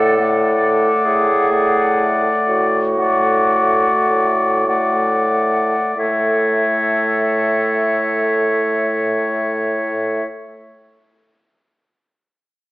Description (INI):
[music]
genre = classical, slow romantic movement for wind quintet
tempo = 29-48 BPM (dotted quarters)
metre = 12/8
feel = rubato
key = A major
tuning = A4 = 440 Hz
[part]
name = concert flute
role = melody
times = 0.0-10.2 s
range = E5 to F#5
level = -22 LUFS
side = left 2 dB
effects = none
[part]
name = warm oboe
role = second line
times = 0.0-10.3 s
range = C#5 to D5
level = -19 LUFS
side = left 1 dB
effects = none
[part]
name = clear clarinet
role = accompaniment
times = 0.0-10.2 s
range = F#4 to A4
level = -21 LUFS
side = right 2 dB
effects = none
[part]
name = mellow French horn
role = accompaniment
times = 0.0-10.2 s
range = A3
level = -24 LUFS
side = equal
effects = none
[part]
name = mellow bassoon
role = bass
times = 0.0-10.2 s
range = A2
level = -21 LUFS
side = equal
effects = none
[sound]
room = wet recital hall reverb, RT60 1.6 s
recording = AM radio sound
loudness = -14 LUFS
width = side -20 dB against mid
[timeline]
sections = 0.0-6.0 A section; 6.0-12.7 B section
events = slowing down 0.0-6.0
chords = 0.0 D/A; 6.0 A